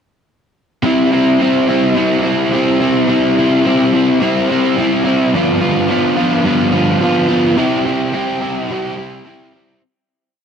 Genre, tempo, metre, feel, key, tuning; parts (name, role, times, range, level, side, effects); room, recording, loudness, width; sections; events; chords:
rock; 107 BPM; 4/4; straight; C major; A4 = 441 Hz
overdriven electric guitar; solo; 0.8-9.8 s; G2 to G4; -12 LUFS; equal; wide subtle chorus
light reverb; dark, warm production; -12 LUFS; side -7 dB against mid
0.8-9.8 A section
fade-out 7.6-9.8
0.8 C; 5.3 G7; 7.6 C